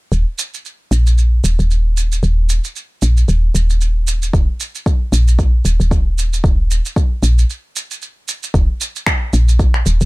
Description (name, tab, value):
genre	organic downtempo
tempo	114 BPM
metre	4/4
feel	swing 57% on 16ths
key	unclear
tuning	A4 = 440 Hz
part	woody FM bass	bass	0.1-10.1 s	Eb1 to Bb1	-13 LUFS	equal	tube saturation, sidechain pumping
part	electronic shaker and finger snaps	drums	0.1-10.1 s	none	-23 LUFS	right 3 dB	none
part	electronic kick drum	drums	4.3-9.7 s	none	-15 LUFS	equal	none
room	little or no reverb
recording	none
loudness	-13 LUFS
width	side -22 dB against mid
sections	0.1-8.5 A section; 8.5-10.1 B section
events	break 7.5-8.5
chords	none